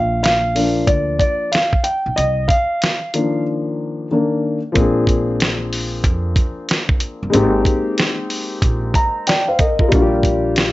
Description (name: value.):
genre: hip hop, jazz-hop.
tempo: 93 BPM.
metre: 4/4.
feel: swing 63% on 16ths.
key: unclear.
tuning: A4 = 435 Hz.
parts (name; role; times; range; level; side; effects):
dark concert grand piano; accompaniment; 0.0-10.7 s; Eb3 to Bb5; -18 LUFS; left 1 dB; none.
upright bass; bass; 0.0-10.7 s; G1 to F2; -22 LUFS; right 1 dB; none.
dusty soul sampler-style drum kit; drums; 0.2-10.7 s; hi-hat, kick drum, snare drum; -17 LUFS; right 1 dB; none.
room: moderate studio reverb, RT60 0.6 s.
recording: nothing above 7.8 kHz.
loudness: -15 LUFS.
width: side -17 dB against mid.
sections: 0.0-4.8 A section; 4.8-10.7 A section.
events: grand piano solo 0.0-4.8; break 3.5-4.8; grand piano fill 8.6-9.9.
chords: 0.0 Bb6; 2.2 Cm11; 4.1 Bbadd11/Eb; 4.8 Bb9; 7.3 Abmaj9; 9.9 Gm7/Bb.